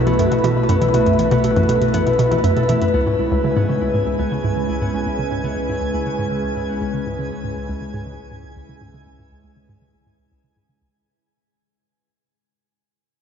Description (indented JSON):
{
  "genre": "ambient, sequencer-driven space music",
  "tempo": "120 BPM",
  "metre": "4/4",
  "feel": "straight",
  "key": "C# minor",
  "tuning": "A4 = 440 Hz",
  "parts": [
    { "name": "phased analog pad", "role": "sustained chords", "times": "0.0-10.9 s", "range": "G#3 to B4", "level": "-22 LUFS", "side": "equal", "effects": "phaser, chorus, shimmer reverb" },
    { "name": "concert harp", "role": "arpeggios", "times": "0.0-9.8 s", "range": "B3 to B4", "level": "-23 LUFS", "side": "moving between left 3 dB and right 3 dB", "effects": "auto-pan, ping-pong delay, shimmer reverb" },
    { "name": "hollow square pluck", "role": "riff", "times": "0.0-10.9 s", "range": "C#2 to C#3", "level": "-21 LUFS", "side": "equal", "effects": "chorus, ping-pong delay, shimmer reverb" },
    { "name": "fat analog bass", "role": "bass", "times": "0.0-10.9 s", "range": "B1 to C#2", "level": "-31 LUFS", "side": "equal", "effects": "none" },
    { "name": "booming analog drum machine", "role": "percussion", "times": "0.1-2.9 s", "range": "hi-hat, toms", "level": "-30 LUFS", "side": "left 1 dB", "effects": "ping-pong delay" },
    { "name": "twinkling granular texture", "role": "texture", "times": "3.5-10.9 s", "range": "G#4 to G#5", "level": "-31 LUFS", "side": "right 2 dB", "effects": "built-in reverb, shimmer reverb" }
  ],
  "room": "wet huge ambient reverb, RT60 7.0 s",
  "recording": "nothing above 7.5 kHz",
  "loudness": "-16 LUFS",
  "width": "side -7 dB against mid",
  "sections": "0.0-2.9 A section; 2.9-10.9 B section",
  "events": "fade-out 2.9-10.9; filter sweep on synth arpeggio sound 2.9-10.9",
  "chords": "0.0 B7sus4; 2.9 C#m7"
}